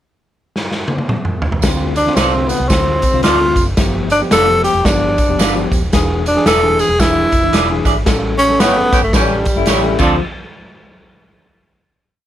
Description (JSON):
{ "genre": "uptempo 1960s-style soul", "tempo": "112 BPM", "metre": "4/4", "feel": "swing 60% on 8ths", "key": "D dorian", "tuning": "A4 = 441 Hz", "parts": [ { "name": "raw garage drum kit", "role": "drums", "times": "0.6-10.1 s", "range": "crash cymbal, hi-hat, kick drum, snare drum, toms", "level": "-17 LUFS", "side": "equal", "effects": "none" }, { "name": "tine electric piano", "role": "accompaniment", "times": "1.6-10.2 s", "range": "D3 to A4", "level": "-21 LUFS", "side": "left 2 dB", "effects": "medium stereo tremolo" }, { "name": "vintage muted fingered electric bass", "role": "bass", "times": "1.6-10.2 s", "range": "Eb1 to D2", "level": "-21 LUFS", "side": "equal", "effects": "none" }, { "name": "tambourine", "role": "percussion", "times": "1.6-10.2 s", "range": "none", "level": "-28 LUFS", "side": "right 9 dB", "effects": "none" }, { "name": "breathy tenor saxophone", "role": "melody", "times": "2.0-10.2 s", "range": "F3 to A4", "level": "-14 LUFS", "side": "equal", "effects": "none" }, { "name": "electric guitar through a small old amp", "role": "stabs", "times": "2.2-10.1 s", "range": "A3 to D5", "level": "-19 LUFS", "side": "right 4 dB", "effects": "none" }, { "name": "warm horn section", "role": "second line", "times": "8.6-10.2 s", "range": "E3 to A4", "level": "-19 LUFS", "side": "equal", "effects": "none" }, { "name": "mellow electric guitar", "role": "riff", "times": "9.1-10.0 s", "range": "E4 to B4", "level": "-22 LUFS", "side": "left 8 dB", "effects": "none" } ], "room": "light reverb", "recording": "none", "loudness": "-12 LUFS", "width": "side -11 dB against mid", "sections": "0.0-1.6 pickup bar; 1.6-10.2 verse; 10.2-12.3 final hit", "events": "drum fill 0.6-1.6; band accent 8.1-10.2", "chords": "0.0 N.C.; 1.6 Dm7; 3.8 G7; 5.9 E7; 8.1 A7; 9.9 Dm7; 10.2 N.C." }